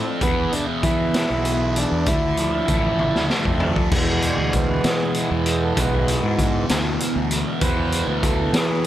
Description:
psychedelic rock; 65 BPM (dotted quarters); 6/8; straight; E phrygian dominant; A4 = 440 Hz
hand-pumped harmonium; sustained chords; 0.0-8.9 s; E3 to C6; -27 LUFS; right 4 dB
thick fuzz guitar; riff; 0.0-8.9 s; E2 to C4; -25 LUFS; left 1 dB; distortion, phaser
combo organ; melody; 0.2-3.3 s; B3 to E4; -25 LUFS; right 1 dB; tape echo
fuzz fingered electric bass; bass; 0.2-8.9 s; A1 to E3; -24 LUFS; equal; overdrive
raw garage drum kit; drums; 0.2-8.9 s; crash cymbal, hi-hat, kick drum, snare drum, toms; -23 LUFS; equal
small room ambience; -18 LUFS; side -12 dB against mid
0.0-3.9 A section; 3.9-8.9 B section
drum fill 3.0-3.9; harmonium solo 3.9-8.9
0.2 E; 2.1 Dmadd9; 3.9 E

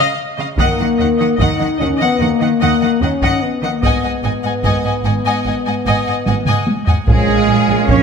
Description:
cinematic, epic orchestral film score; 74 BPM; 4/4; straight; Eb minor; A4 = 440 Hz
dark symphonic violin section; melody; 0.0-8.0 s; Ab4 to Ab5; -22 LUFS; left 2 dB
clear chamber violin section; second line; 0.0-8.0 s; Ab4 to Gb5; -25 LUFS; left 2 dB
clear symphonic viola section; accompaniment; 0.0-7.0 s; Eb5; -23 LUFS; equal
rich symphonic cello section; bass; 0.0-8.0 s; Ab2 to Db4; -20 LUFS; right 4 dB
mellow French horn section; sustained chords; 0.6-7.4 s; F3 to Eb4; -18 LUFS; left 4 dB
rich studio double bass section; bass; 0.6-8.0 s; Ab1 to Eb2; -21 LUFS; right 5 dB
taiko ensemble; drums; 0.6-8.0 s; -18 LUFS; equal
mellow woodwind section; sustained chords; 7.1-8.0 s; F4 to F5; -23 LUFS; equal
bright trumpet section; stabs; 7.1-8.0 s; Ab4 to Db5; -20 LUFS; right 1 dB
moderate scoring stage reverb, RT60 1.5 s; -13 LUFS; side -6 dB against mid
0.0-7.1 A section
drum fill 6.3-7.1
0.0 Dbadd9; 0.6 Ebm; 3.8 Abm7; 7.1 Bbm7

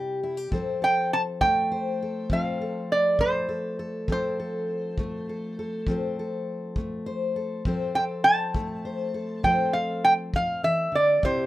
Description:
acoustic country blues, solo or duo; 67 BPM (dotted quarters); 12/8; straight; A4 = 441 Hz
fingerpicked steel-string acoustic guitar; accompaniment; 0.0-11.5 s; C3 to C5; -29 LUFS; left 2 dB
kick drum; drums; 0.5-11.4 s; -31 LUFS; equal
lap resonator guitar; melody; 0.8-11.5 s; C5 to A5; -22 LUFS; right 1 dB
light reverb; rough home demo mix; -23 LUFS; side -15 dB against mid
0.0-11.5 A section
0.0 C; 0.5 F

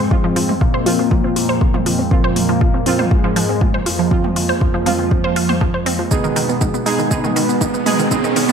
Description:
melodic techno; 120 BPM; 4/4; straight; A4 = 440 Hz
analog synth brass; melody; 0.0-8.5 s; F2 to Cb4; -21 LUFS; equal; chorus, sidechain pumping, dub echo
evolving wavetable pad; sustained chords; 0.0-8.5 s; F2 to Eb4; -24 LUFS; equal; chorus, built-in reverb, sidechain pumping
wide unison pluck; arpeggios; 0.0-8.5 s; Eb3 to C5; -22 LUFS; right 2 dB; sidechain pumping, dub echo
synth brass stab; stabs; 0.0-8.5 s; F3 to Ab4; -22 LUFS; right 3 dB; chorus, sidechain pumping, tape echo
electronic kick drum; drums; 0.1-8.2 s; -17 LUFS; equal; small room reverb
deep house drum kit; drums; 0.4-8.5 s; hi-hat, shaker, toms; -24 LUFS; equal; overdrive, small room reverb
riser; sound effects; 7.5-8.5 s; -25 LUFS; right 2 dB
moderate echo chamber reverb, RT60 1.2 s, digital ambience; echo-heavy mix, high-pass filter; -14 LUFS; side -7 dB against mid
0.0-8.5 A section
build-up 0.0-8.5; filter sweep on analog polysynth 0.0-8.5; filter sweep 0.0-8.5; drum fill 6.1-8.5; riser 7.5-8.5
0.0 Fm; 6.1 Abm

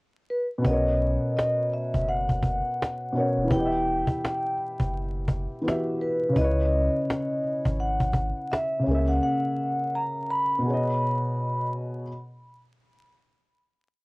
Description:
lo-fi hip hop; 84 BPM; 4/4; swing 58% on 16ths; B major; A4 = 437 Hz
vibraphone with soft mallets; melody; 0.3-11.7 s; B4 to B5; -28 LUFS; equal
dark upright piano; accompaniment; 0.6-12.1 s; B2 to E5; -27 LUFS; equal; cassette tape
cajon; drums; 0.6-9.1 s; -27 LUFS; equal
soft dub sub bass; bass; 0.7-9.2 s; D#1 to C#2; -28 LUFS; equal; transformer saturation
light reverb; worn, warbling old tape, cassette tape, vinyl crackle, warbly pitch drift; -23 LUFS; side -27 dB against mid
0.0-0.6 pickup bar; 0.6-12.1 A section
0.0 N.C.; 0.6 Bmaj9; 3.5 Emadd9; 6.4 C#m9; 8.9 F#7/C#; 10.6 B69

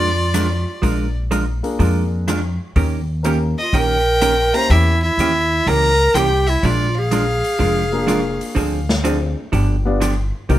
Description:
country, western swing; 124 BPM; 4/4; swing 67% on 8ths; Bb mixolydian; A4 = 441 Hz
bright fiddle; melody; 0.0-8.9 s; D5 to Bb5; -21 LUFS; equal; plate reverb
breathy clarinet; second line; 0.0-8.9 s; E4 to C5; -20 LUFS; right 1 dB
vintage hollow-body jazz guitar; accompaniment; 0.0-10.6 s; C3 to Bb4; -22 LUFS; right 3 dB
upright bass; bass; 0.0-10.6 s; F1 to F2; -19 LUFS; equal
swinging big-band drum kit; drums; 0.3-10.6 s; hi-hat, kick drum, rim click, snare drum; -25 LUFS; left 1 dB
dark upright piano; accompaniment; 1.6-4.7, 7.9-10.6 s; Bb3 to D5; -24 LUFS; left 3 dB
light reverb; -15 LUFS; side -13 dB against mid
0.0-10.6 A section
0.0 Bb7; 2.8 Eb7; 4.7 Edim7; 6.6 Bb7; 8.6 Dm7b5; 9.5 G7

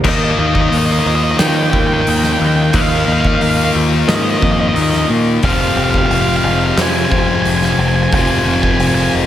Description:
post-rock; 89 BPM; 4/4; straight; A4 = 438 Hz
electric guitar through a small old amp; arpeggios; 0.0-9.3 s; F2 to G4; -24 LUFS; right 1 dB
vibraphone with soft mallets; arpeggios; 0.0-9.3 s; Bb4 to F5; -29 LUFS; right 10 dB
distorted electric guitar; riff; 0.0-9.3 s; F2 to Eb4; -16 LUFS; left 5 dB; overdrive
growling picked electric bass; bass; 0.0-9.3 s; F1 to Eb3; -18 LUFS; equal; overdrive
oversized low-tuned drum kit; drums; 0.0-9.0 s; crash cymbal, hi-hat, kick drum, snare drum; -19 LUFS; equal
octave-fuzz lead guitar; melody; 0.1-9.1 s; Eb5 to Ab5; -19 LUFS; right 3 dB; distortion, digital delay
rich studio string section; sustained chords; 0.1-9.3 s; Eb4 to F5; -28 LUFS; right 3 dB
small room ambience; -11 LUFS; side -11 dB against mid
0.1-9.3 A section
0.1 Ebsus2; 5.4 Fmadd9

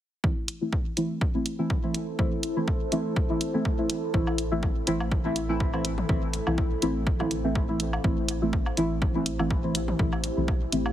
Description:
dub techno; 123 BPM; 4/4; swing 55% on 16ths; A minor; A4 = 440 Hz
deep dark ambient pad; sustained chords; 1.9-10.9 s; E4 to C5; -35 LUFS; right 1 dB; chorus, built-in reverb, vintage 12-bit sampler grit, sidechain pumping
deep mellow chord stab; stabs; 0.2-10.9 s; E3 to E4; -28 LUFS; equal; chorus, phaser, vintage 12-bit sampler grit, sidechain pumping, dub echo
electronic kick drum; drums; 0.2-10.6 s; -27 LUFS; equal; studio reverb
electronic hi-hat; drums; 0.5-10.8 s; -29 LUFS; right 1 dB; studio reverb
soft dub sub bass; bass; 4.1-10.9 s; A1 to B1; -33 LUFS; equal; sidechain pumping
electronic woodblock and toms; percussion; 4.3-10.9 s; -37 LUFS; left 1 dB; sidechain pumping on perc, studio reverb, sidechain pumping on toms, dub echo
digital ambience; heavily compressed radio sound; -24 LUFS; side -12 dB against mid
0.2-4.1 A section; 4.1-10.9 B section
filter sweep on synth stab 0.2-4.1, 4.1-10.9
0.2 Am

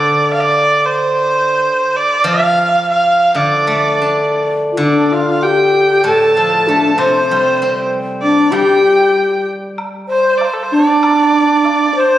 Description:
chinese traditional, Chinese chamber ensemble; 96 BPM; 2/4; straight; A4 = 439 Hz
rich erhu; melody; 0.0-12.2 s; A4 to A5; -14 LUFS; right 2 dB
steel-string zither; accompaniment; 0.0-10.4 s; A2 to D4; -19 LUFS; left 1 dB
breathy bright low xiao; second line; 4.7-12.2 s; D4 to C5; -12 LUFS; left 1 dB
woodblock; percussion; 9.8-11.8 s; -26 LUFS; right 1 dB
wet recital hall reverb, RT60 1.6 s; recorded on a phone in the room, club reverb, compression; -11 LUFS; side -13 dB against mid
0.0-9.8 A section; 9.8-12.2 B section

